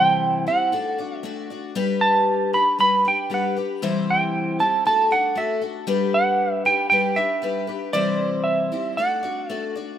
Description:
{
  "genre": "rock",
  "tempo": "116 BPM",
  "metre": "4/4",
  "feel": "straight",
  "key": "G major",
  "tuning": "A4 = 440 Hz",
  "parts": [
    { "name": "clean lap steel guitar", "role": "melody", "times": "0.0-9.7 s", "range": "D5 to B5", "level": "-20 LUFS", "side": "right 2 dB", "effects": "none" },
    { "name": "picked twelve-string acoustic guitar", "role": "accompaniment", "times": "0.0-10.0 s", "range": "C3 to D5", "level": "-24 LUFS", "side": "left 4 dB", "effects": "none" }
  ],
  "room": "light reverb, studio ambience",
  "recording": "rough home demo mix",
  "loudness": "-19 LUFS",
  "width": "side -10 dB against mid",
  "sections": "0.0-10.0 A section",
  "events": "none",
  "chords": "0.0 C; 0.7 D; 1.8 G; 3.8 C; 4.9 D; 5.9 G; 7.9 C; 9.0 D",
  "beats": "0.21 0.73 1.25 | 1.76 2.28 2.79 3.31 | 3.83 4.34 4.86 5.37 | 5.89 6.40 6.92 7.43 | 7.95 8.46 8.98 9.50"
}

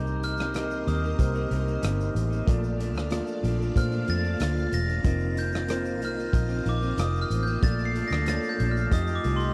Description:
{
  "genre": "indie pop, bedroom pop",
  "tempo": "93 BPM",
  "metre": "4/4",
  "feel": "straight",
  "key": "Bb major",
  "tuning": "A4 = 441 Hz",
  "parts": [
    { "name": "glockenspiel with soft plastic mallets", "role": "melody", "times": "0.0-9.5 s", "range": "C6 to C7", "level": "-35 LUFS", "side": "equal", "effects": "analog chorus, slapback echo" },
    { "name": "electric guitar through a small old amp", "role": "accompaniment", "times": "0.0-9.5 s", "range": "F2 to G4", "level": "-36 LUFS", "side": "equal", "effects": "subtle chorus, warbly pitch drift" },
    { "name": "tine electric piano", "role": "accompaniment", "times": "0.0-9.5 s", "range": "A3 to Eb5", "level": "-36 LUFS", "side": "equal", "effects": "cassette tape" },
    { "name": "phased string machine", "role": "sustained chords", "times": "0.0-9.5 s", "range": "F4 to C6", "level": "-45 LUFS", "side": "equal", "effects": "ensemble chorus, phaser" },
    { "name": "vintage muted fingered electric bass", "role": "bass", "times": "0.0-9.5 s", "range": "E1 to Bb2", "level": "-30 LUFS", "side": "equal", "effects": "none" },
    { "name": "raw garage drum kit", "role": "drums", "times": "0.1-9.5 s", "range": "hi-hat, kick drum, rim click, shaker", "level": "-31 LUFS", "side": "equal", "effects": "none" }
  ],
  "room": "little or no reverb",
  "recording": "dry, close 1970s-style studio recording",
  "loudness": "-27 LUFS",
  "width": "mono",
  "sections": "0.0-9.5 A section",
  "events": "glockenspiel solo 0.0-9.5",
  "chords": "0.0 Cm7; 2.5 Bbmaj7; 5.0 F7sus4; 7.6 Bbmaj7; 8.9 F9",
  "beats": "0.54 1.19 1.83 | 2.47 3.12 3.76 4.41 | 5.05 5.69 6.34 6.98 | 7.63 8.28 8.92"
}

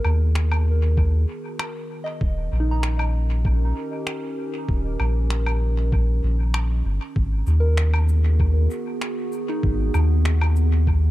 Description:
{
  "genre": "ambient dub",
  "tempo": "97 BPM",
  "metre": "4/4",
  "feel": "straight",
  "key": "G# minor",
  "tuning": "A4 = 440 Hz",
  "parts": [
    { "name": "warbly tape-like pad", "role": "sustained chords", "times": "0.0-11.1 s", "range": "D#3 to A#4", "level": "-31 LUFS", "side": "right 2 dB", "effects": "chorus, built-in reverb" },
    { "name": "soft synth bell", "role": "arpeggios", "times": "0.0-11.1 s", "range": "D#4 to A#5", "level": "-34 LUFS", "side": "left 1 dB", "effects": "chorus, dub echo" },
    { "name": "soft dub sub bass", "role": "bass", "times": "0.0-11.1 s", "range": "D#1 to D#2", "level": "-19 LUFS", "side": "equal", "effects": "none" },
    { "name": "electronic woodblock, finger snaps and shaker", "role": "drums", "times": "0.0-10.7 s", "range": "none", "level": "-32 LUFS", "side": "left 1 dB", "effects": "dub echo" },
    { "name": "electronic kick drum", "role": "drums", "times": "1.0-11.0 s", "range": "none", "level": "-23 LUFS", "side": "equal", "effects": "none" }
  ],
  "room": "little or no reverb",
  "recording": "echo-heavy mix",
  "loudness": "-19 LUFS",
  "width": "side -16 dB against mid",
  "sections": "0.0-11.1 A section",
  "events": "fade-in on ambient pad 0.0-11.1",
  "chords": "0.0 G#m7; 2.2 D#7; 7.2 G#m7",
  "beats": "0.36 0.97 1.59 | 2.21 2.83 3.45 4.07 | 4.69 5.30 5.92 6.54 | 7.16 7.78 8.40 9.02 | 9.63 10.25 10.87"
}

